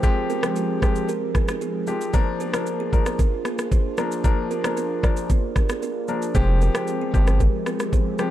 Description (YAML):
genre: afrobeats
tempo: 114 BPM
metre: 4/4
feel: straight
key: F dorian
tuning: A4 = 440 Hz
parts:
  - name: warm grand piano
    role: accompaniment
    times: 0.0-8.3 s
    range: F3 to Bb4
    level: -27 LUFS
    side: left 5 dB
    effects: none
  - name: airy breathy pad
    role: sustained chords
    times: 0.0-8.3 s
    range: F3 to G4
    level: -30 LUFS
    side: equal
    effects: chorus
  - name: afro-pop drum kit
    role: drums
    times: 0.0-8.3 s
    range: kick drum, rim click, shaker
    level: -22 LUFS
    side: equal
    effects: overdrive, vintage 12-bit sampler grit
  - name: kalimba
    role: riff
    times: 0.3-8.3 s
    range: Eb4 to D5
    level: -28 LUFS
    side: right 7 dB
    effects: tape echo
  - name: round analog bass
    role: bass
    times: 6.3-7.5 s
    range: F1 to G1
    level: -19 LUFS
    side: equal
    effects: none
room: digital ambience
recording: dark, warm production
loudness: -20 LUFS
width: side -13 dB against mid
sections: 0.0-8.3 A section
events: none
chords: 0.0 Fmadd9; 2.1 Bb; 6.3 Fmadd9